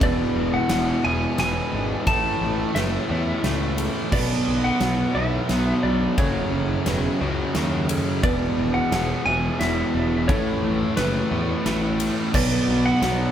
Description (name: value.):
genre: post-rock.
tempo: 88 BPM.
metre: 3/4.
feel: straight.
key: B dorian.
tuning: A4 = 440 Hz.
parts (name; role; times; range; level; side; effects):
clean lap steel guitar; melody; 0.0-13.3 s; B4 to A5; -27 LUFS; equal; none.
electric guitar at the edge of break-up; arpeggios; 0.0-13.3 s; E2 to F#4; -34 LUFS; left 3 dB; none.
felt-muted upright piano; arpeggios; 0.0-13.3 s; A4 to F#5; -37 LUFS; right 3 dB; none.
distorted electric guitar; riff; 0.0-13.3 s; E2 to B3; -24 LUFS; right 1 dB; distortion.
fuzz picked electric bass; bass; 0.0-13.2 s; E1 to E2; -27 LUFS; equal; overdrive.
huge arena drum kit; drums; 0.0-13.2 s; crash cymbal, kick drum, ride cymbal, snare drum; -27 LUFS; equal; none.
ethereal airy pad; sustained chords; 12.7-13.3 s; B3 to F#5; -35 LUFS; right 3 dB; none.
room: moderate studio reverb, RT60 0.7 s.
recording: band playing live in one room.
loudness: -20 LUFS.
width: side -10 dB against mid.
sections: 0.0-13.3 A section.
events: none.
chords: 0.0 E7; 2.1 Aadd9; 4.1 Bm; 6.2 F#m; 8.2 E7; 10.3 Aadd9; 12.3 Bm.